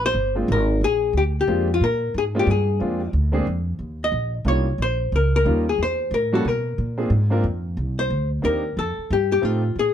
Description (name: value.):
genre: jazz.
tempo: 181 BPM.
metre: 3/4.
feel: swing 64% on 8ths.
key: Bb mixolydian.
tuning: A4 = 438 Hz.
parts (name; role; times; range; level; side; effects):
archtop guitar, miked and amplified; melody; 0.0-9.9 s; F4 to Eb5; -22 LUFS; left 3 dB; none.
upright bass; bass; 0.0-9.9 s; G1 to Cb3; -22 LUFS; right 1 dB; none.
warm baby grand piano; accompaniment; 0.4-9.6 s; G3 to Bb4; -25 LUFS; right 1 dB; none.
room: light reverb.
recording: dark, warm production.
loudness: -19 LUFS.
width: side -9 dB against mid.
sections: 0.0-9.9 A section.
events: none.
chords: 0.0 Bb7; 3.8 Eb7; 5.8 E(b5, no3); 6.8 Bb7; 7.8 Cm7; 8.8 F7.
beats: 0.15 0.48 | 0.81 1.14 1.47 | 1.80 2.14 2.47 | 2.80 3.13 3.46 | 3.79 4.13 4.46 | 4.79 5.12 5.45 | 5.78 6.11 6.44 | 6.77 7.11 7.44 | 7.77 8.10 8.43 | 8.76 9.09 9.42 | 9.75.